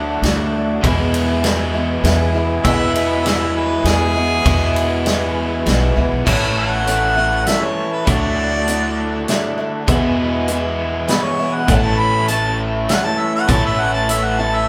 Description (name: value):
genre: folk rock and heartland rock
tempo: 100 BPM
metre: 3/4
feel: straight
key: A major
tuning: A4 = 441 Hz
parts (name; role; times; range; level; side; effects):
- picked steel-string acoustic guitar; accompaniment; 0.0-14.7 s; E2 to E4; -24 LUFS; equal; none
- mellow tonewheel organ; sustained chords; 0.0-14.7 s; E4 to A5; -31 LUFS; equal; none
- overdriven electric guitar; riff; 0.0-14.7 s; E2 to F#4; -25 LUFS; equal; none
- upright bass; bass; 0.0-14.7 s; A1 to E2; -24 LUFS; equal; none
- natural country drum kit; drums; 0.2-14.2 s; crash cymbal, hi-hat, kick drum, ride cymbal, snare drum; -23 LUFS; equal; none
- clear harmonica; second line; 2.6-14.7 s; G#4 to B5; -22 LUFS; equal; none
room: moderate studio reverb, RT60 0.8 s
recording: band playing live in one room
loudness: -17 LUFS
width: mono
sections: 0.0-6.3 A section; 6.3-14.7 B section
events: harmonica solo 6.3-14.7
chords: 0.0 Dadd9; 0.8 E; 6.3 A; 8.1 Dadd9; 9.9 E; 11.7 A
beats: 0.23 | 0.83 1.44 2.04 | 2.65 3.25 3.86 | 4.46 5.07 5.67 | 6.27 6.88 7.48 | 8.08 8.68 9.29 | 9.89 10.49 11.09 | 11.69 12.29 12.89 | 13.49 14.09